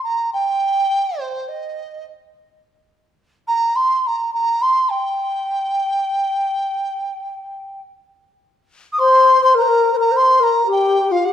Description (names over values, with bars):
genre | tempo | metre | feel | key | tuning
chinese traditional, Chinese chamber ensemble | 104 BPM | 4/4 | straight | G jue mode | A4 = 440 Hz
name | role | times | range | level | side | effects
mellow hollow large dizi | melody | 0.0-11.3 s | C5 to Eb6 | -16 LUFS | right 1 dB | none
low xiao | second line | 9.0-11.3 s | F4 to C5 | -16 LUFS | left 4 dB | none
room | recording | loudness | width
light reverb | minimal, uncompressed stereo recording | -15 LUFS | side -10 dB against mid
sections
0.0-8.4 A section; 8.4-11.3 B section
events
none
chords
none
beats
0.31 0.89 | 1.47 2.05 2.62 3.19 | 3.77 4.34 4.92 5.50 | 6.08 6.66 7.24 7.83 | 8.41 8.98 9.55 10.12 | 10.69 11.25